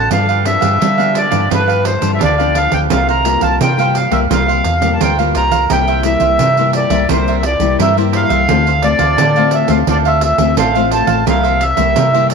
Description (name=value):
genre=samba and choro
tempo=86 BPM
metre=4/4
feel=straight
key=unclear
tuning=A4 = 441 Hz
part: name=accordion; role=melody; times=0.0-12.3 s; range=B4 to Bb5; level=-15 LUFS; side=equal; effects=none
part: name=cavaquinho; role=accompaniment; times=0.0-12.3 s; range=D4 to F5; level=-19 LUFS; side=right 12 dB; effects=none
part: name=nylon-string guitar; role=accompaniment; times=0.0-12.3 s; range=G2 to F4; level=-18 LUFS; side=left 14 dB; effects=none
part: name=hollow-body short-scale fingered electric bass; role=bass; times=0.0-12.3 s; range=A1 to G3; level=-18 LUFS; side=left 1 dB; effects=none
part: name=pandeiro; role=percussion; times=0.1-12.3 s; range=none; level=-20 LUFS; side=right 12 dB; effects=none
room=light reverb, small room ambience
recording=1960s-style stereo with parts hard left and right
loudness=-11 LUFS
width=side -5 dB against mid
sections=0.0-12.3 A section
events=none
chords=0.1 G7; 2.9 C7sus4; 5.7 C7; 8.5 Dm7; 11.3 C7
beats=| 0.11 0.81 1.51 2.21 | 2.91 3.61 4.30 5.00 | 5.70 6.40 7.09 7.79 | 8.49 9.18 9.88 10.57 | 11.27 11.96